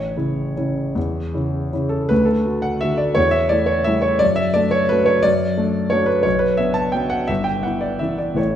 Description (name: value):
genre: classical, piano waltz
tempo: 147-185 BPM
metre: 3/4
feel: rubato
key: D major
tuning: A4 = 439 Hz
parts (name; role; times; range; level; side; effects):
- warm concert grand piano; solo; 0.0-8.6 s; G1 to A5; -17 LUFS; equal; none
room: wet stone room reverb, RT60 1.1 s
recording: heard from further back in the room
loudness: -17 LUFS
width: side -10 dB against mid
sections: 0.0-2.1 A section; 2.1-8.6 B section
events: none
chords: 0.0 A; 2.1 D; 3.2 A5/E; 4.2 D/F#; 6.2 Bm; 7.3 Em/G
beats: 0.16 0.57 | 0.96 1.34 1.73 | 2.11 2.46 2.82 | 3.17 3.51 3.87 | 4.21 4.55 4.90 | 5.24 5.57 5.91 | 6.25 6.59 6.94 | 7.29 7.64 8.01 | 8.38